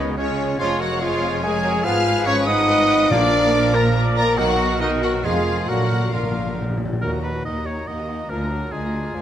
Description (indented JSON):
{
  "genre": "classical",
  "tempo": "142 BPM",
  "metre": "3/4",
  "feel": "straight",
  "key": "Eb minor",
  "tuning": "A4 = 440 Hz",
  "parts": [
    { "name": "rich symphonic violin section", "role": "melody", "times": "0.0-9.2 s", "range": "C#5 to F6", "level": "-28 LUFS", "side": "left 2 dB", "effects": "none" },
    { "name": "clear oboe", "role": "second line", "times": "0.0-9.2 s", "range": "Ab4 to Eb5", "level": "-30 LUFS", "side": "equal", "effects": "none" },
    { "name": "rich symphonic violin section", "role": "second line", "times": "0.0-9.2 s", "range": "B3 to F5", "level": "-31 LUFS", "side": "left 1 dB", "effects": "none" },
    { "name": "silver concert flute", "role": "second line", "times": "0.0-9.2 s", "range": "D#4 to Bb5", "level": "-30 LUFS", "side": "left 2 dB", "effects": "none" },
    { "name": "warm clarinet", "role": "second line", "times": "0.0-9.2 s", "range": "Bb3 to F5", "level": "-28 LUFS", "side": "left 2 dB", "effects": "none" },
    { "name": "clear bassoon", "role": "accompaniment", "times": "0.0-9.2 s", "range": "D3 to G#3", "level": "-31 LUFS", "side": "right 2 dB", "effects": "none" },
    { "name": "clear symphonic viola section", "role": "accompaniment", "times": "0.0-9.2 s", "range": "D4 to D5", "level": "-31 LUFS", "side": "right 2 dB", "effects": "none" },
    { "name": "mellow French horn section", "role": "sustained chords", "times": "0.0-8.4 s", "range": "B2 to F4", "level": "-25 LUFS", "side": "left 3 dB", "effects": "none" },
    { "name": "mellow trumpet", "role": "stabs", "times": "0.0-8.5 s", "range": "B3 to F5", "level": "-24 LUFS", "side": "right 2 dB", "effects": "none" },
    { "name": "rich studio double bass section", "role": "bass", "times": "0.0-9.2 s", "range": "E#1 to Eb2", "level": "-27 LUFS", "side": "right 2 dB", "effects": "none" },
    { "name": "rich symphonic cello section", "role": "bass", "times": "0.0-9.2 s", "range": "D2 to C#3", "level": "-27 LUFS", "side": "right 1 dB", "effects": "none" },
    { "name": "mellow trombone section", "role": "sustained chords", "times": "0.6-8.5 s", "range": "Bb2 to C#4", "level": "-30 LUFS", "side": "right 2 dB", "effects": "none" },
    { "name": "timpani", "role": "percussion", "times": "3.1-7.6 s", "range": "Bb2 to Eb3", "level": "-28 LUFS", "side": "left 2 dB", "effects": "none" }
  ],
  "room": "moderate scoring stage reverb, RT60 1.8 s",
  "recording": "none",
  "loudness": "-18 LUFS",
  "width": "side -10 dB against mid",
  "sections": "0.0-7.0 A section; 7.0-9.2 B section",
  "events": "timpani fill 5.7-7.0",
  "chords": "0.0 C#; 0.6 C#/E#; 1.8 Fm7b5/Ab; 3.1 Bb; 4.4 Bmaj7; 5.2 Fm7; 5.7 Bb; 7.0 Ebm; 8.3 Bb7/D"
}